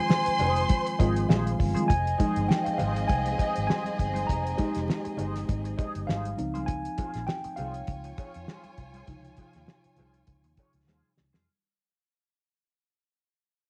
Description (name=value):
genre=lush 1970s-style soul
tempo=100 BPM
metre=4/4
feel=swing 54% on 16ths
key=F minor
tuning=A4 = 438 Hz
part: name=silver concert flute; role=melody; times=0.0-1.3 s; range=Ab5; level=-33 LUFS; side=equal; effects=cassette tape, analog delay
part: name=warm symphonic violin section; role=second line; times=0.0-11.1 s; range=C4 to C6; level=-37 LUFS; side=equal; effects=cassette tape
part: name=mellow tine electric piano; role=accompaniment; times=0.0-11.5 s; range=C3 to Bb5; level=-33 LUFS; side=equal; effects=subtle chorus, cassette tape
part: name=cloth-damped thuddy drum kit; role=drums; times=0.1-11.5 s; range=hi-hat, kick drum, snare drum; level=-29 LUFS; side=equal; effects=none
part: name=congas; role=percussion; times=0.1-11.5 s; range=none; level=-40 LUFS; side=equal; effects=none
part: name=electric guitar through a small old amp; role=riff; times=0.3-11.5 s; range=Eb4 to Eb5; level=-41 LUFS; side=equal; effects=wah, subtle chorus, cassette tape
part: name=vintage muted fingered electric bass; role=bass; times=0.3-11.5 s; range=F1 to F2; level=-34 LUFS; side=equal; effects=none
room=light reverb, small room ambience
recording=home recording on cassette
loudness=-28 LUFS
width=mono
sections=0.0-1.9 A section; 1.9-11.5 B section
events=tine electric piano fill 1.0-1.9; fade-out 1.9-11.5; tine electric piano solo 1.9-11.5; drum fill 10.9-11.5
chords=0.0 Fm7; 6.4 Dbmaj7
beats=0.10 0.70 1.30 | 1.90 2.49 3.09 3.69 | 4.29 4.89 5.49 6.09 | 6.68 7.28 7.88 8.48 | 9.08 9.68 10.28 10.88